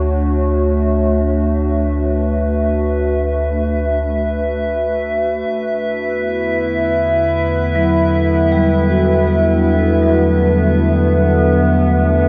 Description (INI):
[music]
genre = ambient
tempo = free time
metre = none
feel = none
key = unclear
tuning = A4 = 440 Hz
[part]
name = warbly tape-like pad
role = sustained chords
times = 0.0-12.3 s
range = A3 to E5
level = -18 LUFS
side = equal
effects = chorus, built-in reverb
[part]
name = warm sub bass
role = bass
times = 0.0-12.3 s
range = D2 to E2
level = -21 LUFS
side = equal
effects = none
[part]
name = analog drone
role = drone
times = 6.4-12.3 s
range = D3 to A3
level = -26 LUFS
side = equal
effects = chorus
[part]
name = vibraphone with medium mallets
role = arpeggios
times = 7.8-12.3 s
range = F#3 to F#4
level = -20 LUFS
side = equal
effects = tape echo
[sound]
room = wet huge ambient reverb, RT60 8.0 s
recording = worn, warbling old tape, cassette tape, warbly pitch drift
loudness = -16 LUFS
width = mono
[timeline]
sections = 0.0-12.3 A section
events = none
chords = 0.0 Dmaj7; 5.5 Em